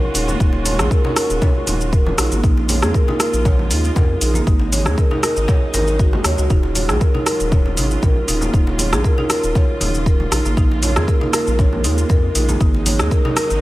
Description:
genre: afro house.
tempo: 118 BPM.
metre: 4/4.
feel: straight.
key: Eb minor.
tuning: A4 = 440 Hz.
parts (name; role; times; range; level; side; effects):
dark studio string section; sustained chords; 0.0-13.6 s; Db3 to Gb4; -26 LUFS; right 2 dB; sidechain pumping.
marimba with medium mallets; arpeggios; 0.0-13.4 s; Bb3 to Db5; -22 LUFS; right 1 dB; vintage 12-bit sampler grit, sidechain pumping, low-pass filter, dub echo.
round analog bass; bass; 0.0-13.6 s; Eb1 to F2; -20 LUFS; equal; sidechain pumping.
deep house drum kit; drums; 0.1-13.6 s; hi-hat, rim click, shaker; -22 LUFS; equal; studio reverb.
congas; percussion; 0.1-13.3 s; none; -27 LUFS; equal; none.
electronic kick drum; drums; 0.4-13.2 s; none; -16 LUFS; equal; studio reverb.
room: little or no reverb.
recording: none.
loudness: -14 LUFS.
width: side -17 dB against mid.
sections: 0.0-13.6 A section.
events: filter sweep on marimba 0.0-13.6.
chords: 0.0 Ebm11; 2.4 Bbm7; 4.5 Ab7sus4; 6.5 Ebm11; 10.6 Bbm7; 12.6 Ab7sus4.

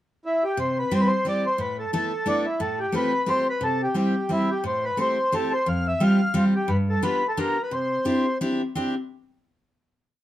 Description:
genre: musette.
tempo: 176 BPM.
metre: 3/4.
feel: swing 55% on 8ths.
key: C major.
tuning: A4 = 440 Hz.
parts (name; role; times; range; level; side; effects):
mellow accordion; melody; 0.3-8.4 s; D4 to F5; -24 LUFS; equal; none.
picked steel-string acoustic guitar; accompaniment; 0.6-8.9 s; F2 to A4; -24 LUFS; equal; none.
room: moderate studio reverb, RT60 0.6 s.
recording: dark, warm production.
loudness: -21 LUFS.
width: side -13 dB against mid.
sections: 0.0-0.6 pickup bar; 0.6-8.8 A section; 8.8-9.8 final chord.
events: none.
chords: 0.0 N.C.; 0.6 C; 1.6 Asus2; 2.6 Fadd9/A; 3.6 C; 4.6 Am7; 5.7 Fsus2; 6.7 G7; 7.7 Cadd9.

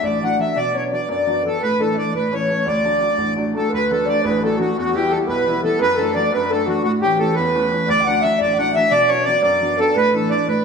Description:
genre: celtic folk, Celtic jig.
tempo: 115 BPM (dotted quarters).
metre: 6/8.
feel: straight.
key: D major.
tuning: A4 = 440 Hz.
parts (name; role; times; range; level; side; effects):
accordion; melody; 0.0-10.6 s; F#4 to F#5; -19 LUFS; right 2 dB; none.
baroque flute; second line; 0.0-10.6 s; F#4 to G5; -22 LUFS; left 4 dB; none.
clear baby grand piano; accompaniment; 0.0-10.6 s; A1 to E4; -22 LUFS; right 1 dB; none.
room: wet stone room reverb, RT60 1.3 s.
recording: band playing live in one room, nothing above 10.7 kHz.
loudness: -16 LUFS.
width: side -5 dB against mid.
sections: 0.0-3.7 A section; 3.7-10.6 A section.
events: none.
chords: 0.0 D; 0.6 Bm; 1.6 Asus4; 2.1 A; 2.7 D; 4.8 Em; 5.8 D/F#; 6.8 A; 7.9 D; 8.9 Bm; 10.0 Asus4.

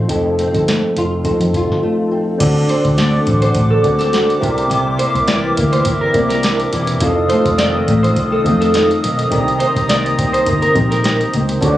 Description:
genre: indie pop, bedroom pop.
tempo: 104 BPM.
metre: 4/4.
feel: swing 55% on 16ths.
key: unclear.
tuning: A4 = 440 Hz.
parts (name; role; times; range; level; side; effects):
nylon-string guitar; accompaniment; 0.0-11.8 s; F2 to G4; -19 LUFS; left 2 dB; ensemble chorus, vibrato effect.
soft electric-piano-like synth keys; accompaniment; 0.0-11.8 s; F3 to Eb5; -20 LUFS; right 1 dB; chorus.
vintage muted fingered electric bass; bass; 0.0-11.8 s; E1 to F2; -19 LUFS; equal; none.
soft vintage rhythm box; drums; 0.1-11.8 s; crash cymbal, hi-hat, kick drum, snare drum; -21 LUFS; equal; none.
warm woodwind section; sustained chords; 2.4-11.8 s; A4 to Eb6; -20 LUFS; left 1 dB; none.
electric guitar through a small old amp; second line; 2.7-11.2 s; A4 to D5; -19 LUFS; right 1 dB; analog chorus, tape echo.
room: light reverb.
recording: recorded on a phone in the room, studio reverb, compression.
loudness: -13 LUFS.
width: side -14 dB against mid.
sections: 0.0-2.4 A section; 2.4-11.8 B section.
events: none.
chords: 0.0 F7; 2.4 D7; 4.4 C9; 7.0 F7; 9.3 Cm7.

